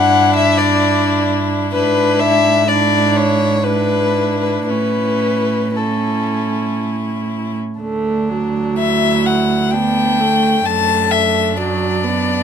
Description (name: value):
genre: classical, slow romantic movement for string quartet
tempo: 55-67 BPM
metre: 3/4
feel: rubato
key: D major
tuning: A4 = 440 Hz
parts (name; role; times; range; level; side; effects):
- warm violin; melody; 0.0-12.4 s; E4 to A5; -20 LUFS; left 7 dB; none
- warm violin; second line; 0.0-12.4 s; D4 to F#5; -18 LUFS; left 4 dB; none
- warm viola; accompaniment; 0.0-12.4 s; F#3 to D4; -20 LUFS; right 3 dB; none
- warm cello; bass; 0.0-12.4 s; D2 to A2; -20 LUFS; right 4 dB; none
room: light reverb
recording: close, detailed microphones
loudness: -14 LUFS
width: side -8 dB against mid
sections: 0.0-7.8 A section; 7.8-12.4 B section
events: none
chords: 0.0 Em9/G; 1.8 E7/G#; 4.7 A; 7.8 D; 10.7 D/F#